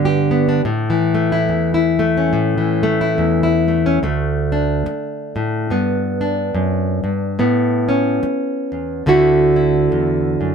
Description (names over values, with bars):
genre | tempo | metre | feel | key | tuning
folk, solo fingerstyle acoustic guitar | 71 BPM | 4/4 | swing 59% on 8ths | D major | A4 = 439 Hz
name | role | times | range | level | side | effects
nylon-string guitar | solo | 0.0-10.5 s | D2 to G4 | -15 LUFS | equal | none
room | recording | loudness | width
light reverb | none | -15 LUFS | side -6 dB against mid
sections
0.0-4.0 A section; 4.0-10.5 B section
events
none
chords
0.0 G; 0.6 A; 4.0 D5; 5.7 G; 7.4 Aadd9; 9.1 Dadd9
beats
| 0.64 1.49 2.33 3.17 | 4.02 4.86 5.71 6.55 | 7.39 8.23 9.08 9.92